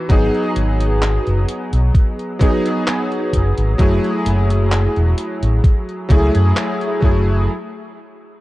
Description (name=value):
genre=vaporwave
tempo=65 BPM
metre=4/4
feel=straight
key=F# dorian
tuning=A4 = 440 Hz
part: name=bright electric grand piano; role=accompaniment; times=0.0-7.5 s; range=E3 to G#4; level=-19 LUFS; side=equal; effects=ensemble chorus, tape echo
part: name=fingered electric bass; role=bass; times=0.1-7.5 s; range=E1 to F#2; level=-16 LUFS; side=equal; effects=none
part: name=detuned 8-bit digital drum machine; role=drums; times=0.1-7.0 s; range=handclaps, hi-hat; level=-26 LUFS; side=equal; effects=none
part: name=electronic kick drum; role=drums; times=0.1-7.2 s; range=none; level=-14 LUFS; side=equal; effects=none
room=little or no reverb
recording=dark, warm production, cassette tape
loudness=-14 LUFS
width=side -17 dB against mid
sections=0.0-7.5 A section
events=none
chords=0.1 G#m7; 3.8 F#m9; 7.5 N.C.